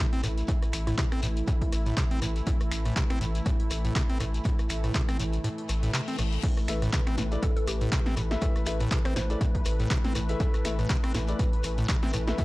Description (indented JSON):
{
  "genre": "acid house",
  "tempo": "121 BPM",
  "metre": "4/4",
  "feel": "swing 56% on 16ths",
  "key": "A minor",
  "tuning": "A4 = 438 Hz",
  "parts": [
    { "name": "warm analog pad", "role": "sustained chords", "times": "0.0-12.4 s", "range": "E3 to B4", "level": "-35 LUFS", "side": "equal", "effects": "chorus, vintage 12-bit sampler grit, sidechain pumping" },
    { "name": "acid bass, square", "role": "riff", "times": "0.0-12.4 s", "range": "A2 to C4", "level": "-32 LUFS", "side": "equal", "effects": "none" },
    { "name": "punchy analog drum machine", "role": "drums", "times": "0.1-12.4 s", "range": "crash cymbal, finger snaps, handclaps, hi-hat, rim click, snare drum", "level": "-35 LUFS", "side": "equal", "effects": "overdrive, studio reverb" },
    { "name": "saturated sub bass", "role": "bass", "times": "0.2-12.3 s", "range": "A1", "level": "-29 LUFS", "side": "equal", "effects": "sidechain pumping" },
    { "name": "shekere", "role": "percussion", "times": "0.2-12.4 s", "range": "none", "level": "-40 LUFS", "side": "left 3 dB", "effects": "none" },
    { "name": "electronic kick drum", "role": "drums", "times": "0.5-12.4 s", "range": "none", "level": "-28 LUFS", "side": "equal", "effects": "studio reverb" },
    { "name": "mallet-like synth pluck", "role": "melody", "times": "0.9-1.1, 7.4-9.2 s", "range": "E4 to C5", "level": "-40 LUFS", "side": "equal", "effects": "chorus, tape echo" },
    { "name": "reverse cymbal", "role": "sound effects", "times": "5.7-6.4 s", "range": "none", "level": "-41 LUFS", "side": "left 6 dB", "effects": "none" },
    { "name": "clear baby grand piano", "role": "stabs", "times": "6.7-12.4 s", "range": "A3 to E5", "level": "-37 LUFS", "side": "left 2 dB", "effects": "tape echo" }
  ],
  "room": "digital ambience",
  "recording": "dry, gritty hardware recording, transformer saturation, cassette tape",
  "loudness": "-25 LUFS",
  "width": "side -20 dB against mid",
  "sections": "0.0-12.4 A section",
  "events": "kick drops out 5.4-6.4; reverse cymbal 5.7-6.4",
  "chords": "0.0 A5"
}